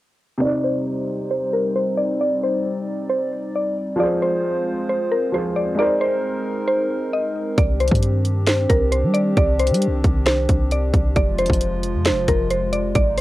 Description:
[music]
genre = hip hop, trap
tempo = 134 BPM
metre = 4/4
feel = half-time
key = C minor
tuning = A4 = 442 Hz
[part]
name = mallet-like synth pluck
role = melody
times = 0.4-13.2 s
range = Bb4 to Eb5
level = -22 LUFS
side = equal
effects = chorus, low-pass filter, analog delay
[part]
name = dark baby grand piano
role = accompaniment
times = 0.4-7.6 s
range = C3 to D5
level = -25 LUFS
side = equal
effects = low-pass filter, cassette tape
[part]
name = hollow soft pad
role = sustained chords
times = 0.7-13.2 s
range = C3 to D5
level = -26 LUFS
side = equal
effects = chorus, low-pass filter, cassette tape
[part]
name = clean 808-style bass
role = bass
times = 7.6-13.2 s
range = F1 to G3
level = -20 LUFS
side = equal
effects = none
[part]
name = trap drum kit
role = drums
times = 7.6-13.2 s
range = finger snaps, hi-hat, kick drum, snare drum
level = -20 LUFS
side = equal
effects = none
[sound]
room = little or no reverb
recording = home recording on cassette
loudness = -18 LUFS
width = side -16 dB against mid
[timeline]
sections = 0.4-7.6 A section; 7.6-13.2 B section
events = filter sweep 0.4-7.6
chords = 0.4 Cmadd9; 4.0 Fm; 5.8 Abadd9; 7.6 Cmadd9; 11.2 Fm

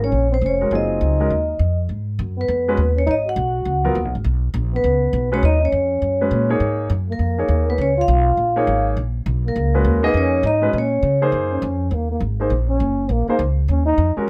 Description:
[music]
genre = modal jazz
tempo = 203 BPM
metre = 4/4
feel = swing 62% on 8ths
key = G# dorian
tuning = A4 = 440 Hz
[part]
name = vibraphone with medium mallets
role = melody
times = 0.0-11.2 s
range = A#4 to F#5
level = -24 LUFS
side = equal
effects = none
[part]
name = trombone with bucket mute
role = second line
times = 0.0-14.1 s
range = A#3 to F#4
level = -26 LUFS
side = equal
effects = none
[part]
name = upright bass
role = bass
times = 0.0-14.2 s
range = F1 to C#3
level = -22 LUFS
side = equal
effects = none
[part]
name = warm grand piano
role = accompaniment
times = 0.6-14.3 s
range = Gb3 to D#5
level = -24 LUFS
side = equal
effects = none
[sound]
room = light reverb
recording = none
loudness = -19 LUFS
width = mono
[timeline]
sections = 0.0-1.9 A section; 1.9-11.3 B section; 11.3-14.3 C section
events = trombone solo 11.3-14.3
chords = 0.0 Ebm9; 1.9 G#m11; 6.6 A#m; 11.3 Ebm9

